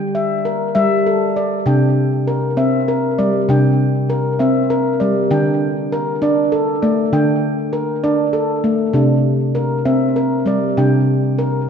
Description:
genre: world meditative, meditative tuned percussion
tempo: 66 BPM (dotted quarters)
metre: 6/8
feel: straight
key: unclear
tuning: A4 = 444 Hz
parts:
  - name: handpan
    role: solo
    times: 0.0-11.7 s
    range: C3 to G5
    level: -14 LUFS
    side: equal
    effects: tape echo
room: wet echo chamber reverb, RT60 1.8 s, studio reverb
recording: dark, warm production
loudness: -14 LUFS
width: side -7 dB against mid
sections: 0.0-1.7 A section; 1.7-11.7 B section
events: none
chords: 0.0 Gm; 1.7 C; 5.3 D5; 9.0 C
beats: 0.75 | 1.66 2.57 | 3.48 4.39 | 5.30 6.21 | 7.13 8.04 | 8.95 9.86 | 10.78 11.69

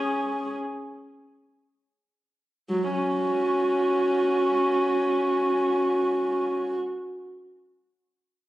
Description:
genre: classical, free, expressive piece for unaccompanied viola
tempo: free time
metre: none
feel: none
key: unclear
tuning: A4 = 440 Hz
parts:
  - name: warm viola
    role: solo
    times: 0.0-6.8 s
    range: F#3 to G#4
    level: -23 LUFS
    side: equal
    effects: none
room: moderate recital hall reverb, RT60 1.4 s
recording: recorded on a phone in the room, club reverb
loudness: -22 LUFS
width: side -15 dB against mid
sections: 0.0-2.7 A section; 2.7-8.5 B section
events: slowing down 0.0-2.7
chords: none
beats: free time

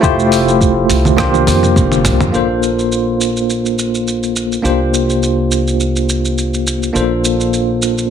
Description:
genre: sunset chillout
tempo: 104 BPM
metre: 4/4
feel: swing 55% on 16ths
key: Bb lydian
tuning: A4 = 441 Hz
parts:
  - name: bell-like tine electric piano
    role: accompaniment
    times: 0.0-8.1 s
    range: A3 to C5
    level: -14 LUFS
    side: moving between left 4 dB and right 3 dB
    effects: medium stereo tremolo, auto-pan, tape echo
  - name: upright bass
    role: bass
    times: 0.0-8.1 s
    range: F1 to F2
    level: -18 LUFS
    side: equal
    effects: none
  - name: dusty soul sampler-style drum kit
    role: drums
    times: 0.0-8.1 s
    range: congas, hi-hat, rim click, shaker, toms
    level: -20 LUFS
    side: right 2 dB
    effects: none
  - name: electronic kick drum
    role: drums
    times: 0.0-1.9 s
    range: none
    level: -16 LUFS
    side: equal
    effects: none
room: moderate plate reverb, RT60 1.3 s, digital ambience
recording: heavily compressed radio sound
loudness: -12 LUFS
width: side -8 dB against mid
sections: 0.0-2.3 A section; 2.3-8.1 B section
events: drum fill 1.2-2.3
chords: 0.0 Fmaj7; 1.2 C7sus4; 2.3 Bbmaj7; 4.6 C9sus4; 7.0 Bbmaj7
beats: | 0.03 0.61 1.18 1.76 | 2.34 2.92 3.49 4.07 | 4.65 5.22 5.80 6.38 | 6.95 7.53

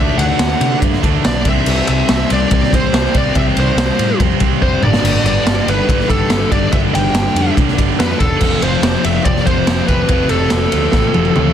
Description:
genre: hard rock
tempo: 142 BPM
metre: 4/4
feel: straight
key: G mixolydian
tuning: A4 = 440 Hz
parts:
  - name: smooth overdriven lead guitar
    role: melody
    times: 0.0-11.5 s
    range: A4 to G5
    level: -20 LUFS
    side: equal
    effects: analog delay
  - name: dark analog pad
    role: sustained chords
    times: 0.0-11.5 s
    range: F3 to E5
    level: -28 LUFS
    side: right 3 dB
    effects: none
  - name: heavy high-gain guitar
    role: riff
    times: 0.0-11.5 s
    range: F2 to D4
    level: -22 LUFS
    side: right 14 dB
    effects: distortion
  - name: overdriven semi-hollow guitar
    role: riff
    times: 0.0-11.5 s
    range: F2 to D4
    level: -21 LUFS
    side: left 13 dB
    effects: spring reverb
  - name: picked electric bass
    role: bass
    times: 0.0-11.5 s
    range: E1 to C3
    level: -19 LUFS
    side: equal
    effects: none
  - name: raw garage drum kit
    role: drums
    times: 0.2-11.5 s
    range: crash cymbal, kick drum, ride cymbal, snare drum, toms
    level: -16 LUFS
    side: equal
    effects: none
  - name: distorted electric guitar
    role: riff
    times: 5.0-11.5 s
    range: F2 to D4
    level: -23 LUFS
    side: equal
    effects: distortion
room: small room ambience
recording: dense, heavily limited modern master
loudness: -12 LUFS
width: side -9 dB against mid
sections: 0.0-11.5 A section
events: drum fill 4.6-5.0, 10.9-11.5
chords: 0.0 D; 1.5 C; 4.8 G; 8.4 F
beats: 0.41 0.83 1.25 | 1.67 2.09 2.52 2.94 | 3.36 3.78 4.20 4.62 | 5.04 5.47 5.89 6.31 | 6.73 7.15 7.58 8.00 | 8.42 8.84 9.26 9.68 | 10.10 10.52 10.95 11.37

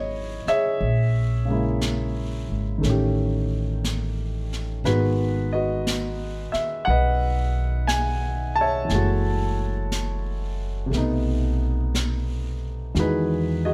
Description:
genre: jazz ballad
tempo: 59 BPM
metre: 4/4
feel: swing 66% on 8ths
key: unclear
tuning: A4 = 439 Hz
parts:
  - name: warm grand piano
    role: accompaniment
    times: 0.0-13.7 s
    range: C3 to A5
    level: -28 LUFS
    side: equal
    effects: none
  - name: upright bass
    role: bass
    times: 0.0-13.7 s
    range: F#1 to E2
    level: -27 LUFS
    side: equal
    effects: none
  - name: jazz brush drum kit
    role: drums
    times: 0.5-13.7 s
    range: brushed snare drum, hi-hat, snare drum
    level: -36 LUFS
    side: equal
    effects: none
room: light reverb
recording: none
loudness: -24 LUFS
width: mono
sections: 0.0-13.7 A section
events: none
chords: 0.0 C#m9; 0.8 A#m7b5; 2.8 A7#11; 4.8 G#m7; 8.9 F#m9; 10.9 B7b9; 13.0 Emaj9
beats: | 0.80 1.81 2.83 3.84 | 4.85 5.86 6.87 7.89 | 8.90 9.91 10.93 11.94 | 12.96

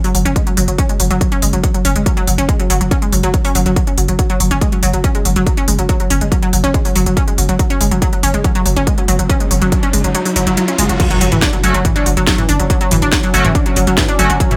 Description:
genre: driving peak-time techno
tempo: 141 BPM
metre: 4/4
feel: straight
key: unclear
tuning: A4 = 440 Hz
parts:
  - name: analog pluck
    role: riff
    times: 0.0-14.6 s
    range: E3 to D4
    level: -19 LUFS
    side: equal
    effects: chorus, sidechain pumping, delay
  - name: techno drum kit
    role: drums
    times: 0.0-14.6 s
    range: crash cymbal, hi-hat, snare drum, toms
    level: -22 LUFS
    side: equal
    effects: sidechain pumping on hats, small room reverb, sidechain pumping on cymbals, sidechain pumping on toms
  - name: growling 808-style bass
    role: bass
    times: 0.1-14.4 s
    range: F#1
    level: -21 LUFS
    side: equal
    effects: tube saturation, sidechain pumping, low-pass filter
  - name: electronic kick drum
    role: drums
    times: 0.4-14.5 s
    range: none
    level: -18 LUFS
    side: equal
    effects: small room reverb
  - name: riser and impact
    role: sound effects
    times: 9.0-12.7 s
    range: none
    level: -27 LUFS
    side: equal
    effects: none
  - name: analog drone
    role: drone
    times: 12.4-14.6 s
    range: F#3 to C#4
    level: -26 LUFS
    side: equal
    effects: chorus, sidechain pumping
  - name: sync-sweep polysynth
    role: stabs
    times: 11.6-14.3 s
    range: A3 to F#4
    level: -21 LUFS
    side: equal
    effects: chorus, cassette tape, sidechain pumping, tape echo
room: light reverb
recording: none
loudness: -14 LUFS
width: mono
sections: 0.0-11.0 A section; 11.0-14.6 B section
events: riser 9.0-11.0; kick drops out 10.1-11.0; drop 11.0-14.6; impact 11.0-12.7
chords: 0.0 F#5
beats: 0.36 | 0.79 1.21 1.64 2.06 | 2.49 2.91 3.34 3.76 | 4.19 4.62 5.04 5.47 | 5.89 6.32 6.74 7.17 | 7.59 8.02 8.44 8.87 | 9.30 9.72 10.15 10.57 | 11.00 11.42 11.85 12.27 | 12.70 13.12 13.55 13.98 | 14.40

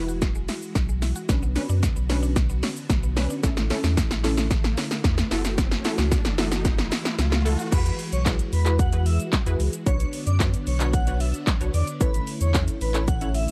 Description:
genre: dance-pop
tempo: 112 BPM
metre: 4/4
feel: straight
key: unclear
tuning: A4 = 440 Hz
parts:
  - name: unison pluck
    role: accompaniment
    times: 0.0-13.5 s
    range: C#4 to C#5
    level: -34 LUFS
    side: equal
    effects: sidechain pumping
  - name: string machine, violas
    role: sustained chords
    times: 0.0-13.5 s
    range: D3 to F#4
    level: -37 LUFS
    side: equal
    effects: ensemble chorus, sidechain pumping
  - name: mallet-like synth pluck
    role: arpeggios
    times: 0.0-7.7 s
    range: D3 to F#4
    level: -41 LUFS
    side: equal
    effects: none
  - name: warm sub bass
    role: bass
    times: 0.0-13.5 s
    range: E1 to F#2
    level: -26 LUFS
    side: equal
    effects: sidechain pumping
  - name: riser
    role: sound effects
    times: 2.6-7.7 s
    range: none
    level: -42 LUFS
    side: equal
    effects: none
  - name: house drum kit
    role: drums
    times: 0.1-13.5 s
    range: crash cymbal, handclaps, hi-hat, kick drum, shaker, snare drum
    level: -27 LUFS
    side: equal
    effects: none
  - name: airy dreamy lead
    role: melody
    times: 7.7-13.5 s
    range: B4 to F#5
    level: -35 LUFS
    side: equal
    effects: chorus, phaser, sidechain pumping
room: little or no reverb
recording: dry, gritty hardware recording, vinyl crackle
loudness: -24 LUFS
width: mono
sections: 0.0-7.7 A section; 7.7-13.5 B section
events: build-up 0.0-7.7; drum fill 0.0-7.7; drop 7.7-13.5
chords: 0.0 Eadd9; 1.3 Bmadd9; 3.4 A; 5.3 F#m7; 7.7 Eadd9; 9.9 Bmadd9; 12.0 A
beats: 0.22 0.76 | 1.29 1.83 2.36 2.90 | 3.44 3.97 4.51 5.04 | 5.58 6.11 6.65 7.18 | 7.72 8.26 8.79 9.33 | 9.86 10.40 10.94 11.47 | 12.01 12.54 13.08

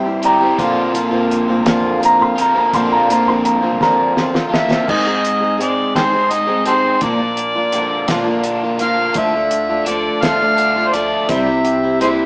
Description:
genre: folk rock and heartland rock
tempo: 56 BPM (dotted quarters)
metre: 6/8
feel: straight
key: unclear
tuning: A4 = 440 Hz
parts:
  - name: clear upright piano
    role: second line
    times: 0.0-4.9 s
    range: D5 to C6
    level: -16 LUFS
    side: equal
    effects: none
  - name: picked plugged-in swing-style acoustic guitar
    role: accompaniment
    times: 0.0-12.3 s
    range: Ab2 to Ab4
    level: -18 LUFS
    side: equal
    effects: none
  - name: overdriven electric guitar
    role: riff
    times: 0.0-12.3 s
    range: Ab2 to G4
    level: -20 LUFS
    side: equal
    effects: none
  - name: upright bass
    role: bass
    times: 0.0-12.2 s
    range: Bb1 to Ab2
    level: -33 LUFS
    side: equal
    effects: none
  - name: cloth-damped thuddy drum kit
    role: drums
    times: 0.2-12.2 s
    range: crash cymbal, hi-hat, kick drum, snare drum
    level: -21 LUFS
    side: equal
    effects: none
  - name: overdriven harmonica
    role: melody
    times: 4.5-12.3 s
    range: G4 to F5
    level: -16 LUFS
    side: equal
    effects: none
room: wet stone room reverb, RT60 1.1 s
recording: band playing live in one room, small speaker sound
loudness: -13 LUFS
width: side -36 dB against mid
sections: 0.0-4.9 A section; 4.9-12.3 B section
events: upright piano solo 0.0-4.9; drum fill 3.8-4.9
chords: 0.0 C; 0.6 Bbadd9; 4.9 Ab; 7.0 Bb; 9.2 Dm; 11.3 C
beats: | 0.59 1.66 | 2.73 3.81 | 4.88 5.95 | 7.02 8.09 | 9.16 10.23 | 11.29

